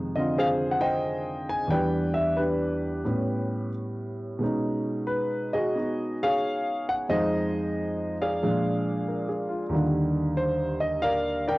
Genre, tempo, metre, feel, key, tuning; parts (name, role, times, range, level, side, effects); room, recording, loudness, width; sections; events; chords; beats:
solo jazz; 90 BPM; 4/4; swing 67% on 8ths, rubato; Eb major; A4 = 440 Hz
warm concert grand piano; solo; 0.0-11.6 s; Eb2 to Ab5; -24 LUFS; equal; cassette tape
light reverb, small room ambience; home recording on cassette; -24 LUFS; side -20 dB against mid
0.0-11.6 A section
0.0 Fm7; 1.7 Em7; 3.0 A9; 4.4 B69; 7.1 Fm7; 8.4 Bb7; 9.7 Ebmaj7
0.37 1.04 | 1.70 2.37 3.04 3.72 | 4.41 5.08 5.76 6.43 | 7.10 7.76 8.43 9.08 | 9.72 10.37 11.02